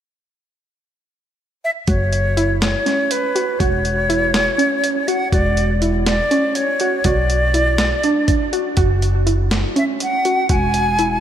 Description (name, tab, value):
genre	progressive instrumental, band music in an uneven meter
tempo	244 BPM (eighths)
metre	7/8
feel	straight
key	unclear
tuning	A4 = 442 Hz
part	breathy bright concert flute	melody	1.6-11.2 s	B4 to G#5	-19 LUFS	equal	tape echo
part	warbly dusty pluck	arpeggios	1.9-11.2 s	C#4 to F#4	-21 LUFS	right 2 dB	chorus, tape echo
part	upright bass	bass	1.9-11.2 s	E1 to B1	-19 LUFS	equal	none
part	dusty soul sampler-style drum kit	drums	1.9-11.1 s	hi-hat, kick drum, snare drum	-22 LUFS	equal	overdrive
room	moderate cathedral reverb, RT60 4.3 s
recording	dreamy mix soaked in reverb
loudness	-15 LUFS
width	side -10 dB against mid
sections	0.2-1.9 A section; 1.9-11.2 B section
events	none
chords	0.2 N.C.; 1.9 F#5; 3.6 C#m/E; 7.0 Bm; 8.8 F#5; 10.5 C#m/E (rootless)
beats	| 0.15 0.40 0.64 0.89 1.14 1.38 1.63 | 1.88 2.12 2.37 2.62 2.86 3.11 3.35 | 3.60 3.85 4.09 4.34 4.59 4.83 5.08 | 5.33 5.57 5.82 6.07 6.31 6.56 6.80 | 7.05 7.30 7.54 7.79 8.04 8.28 8.53 | 8.78 9.02 9.27 9.51 9.76 10.01 10.25 | 10.50 10.74 10.99